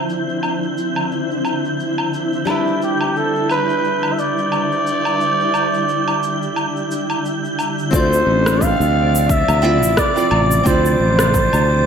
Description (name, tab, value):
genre	sunset chillout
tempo	88 BPM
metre	4/4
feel	swing 57% on 16ths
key	D dorian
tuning	A4 = 440 Hz
part	nylon-string guitar	accompaniment	0.0-11.9 s	F3 to E5	-23 LUFS	moving between left 7 dB and right 7 dB	auto-pan
part	shimmering ambient pad	sustained chords	0.0-11.9 s	C3 to D5	-22 LUFS	equal	chorus, built-in reverb
part	wind-like tuned noise texture	texture	0.0-11.9 s	G6 to A6	-27 LUFS	equal	built-in reverb, ensemble chorus
part	electronic shaker, woodblock and rim click	drums	0.1-11.7 s	none	-23 LUFS	left 1 dB	overdrive, low-pass filter on perc, low-pass filter on snare, low-pass filter on room, gated reverb
part	trumpet with bucket mute	melody	2.5-11.9 s	E4 to F5	-18 LUFS	right 1 dB	ping-pong delay
part	sustaining fretless electric bass	bass	7.9-11.9 s	A1 to D2	-17 LUFS	equal	none
part	electronic kick drum	drums	7.9-11.5 s	none	-20 LUFS	equal	overdrive
room	moderate lush hall reverb, RT60 1.8 s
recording	bright 1980s-style digital production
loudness	-15 LUFS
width	side -7 dB against mid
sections	0.0-7.9 A section; 7.9-11.9 B section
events	none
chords	0.0 Dm9; 2.5 Em7; 7.6 Dm9